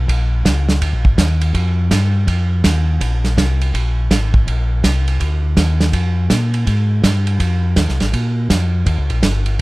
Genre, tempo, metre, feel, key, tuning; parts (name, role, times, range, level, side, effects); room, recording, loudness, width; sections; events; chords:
soul jazz organ trio; 164 BPM; 4/4; swing 64% on 8ths; A4 = 444 Hz
mellow tonewheel organ; bass; 0.0-9.6 s; G1 to Bb2; -15 LUFS; equal; slow rotary speaker
warm soul drum kit; drums; 0.1-9.6 s; hi-hat, kick drum, ride cymbal, snare drum; -18 LUFS; right 1 dB
little or no reverb; close, detailed microphones; -14 LUFS; side -21 dB against mid
0.0-3.0 A section; 3.0-9.6 B section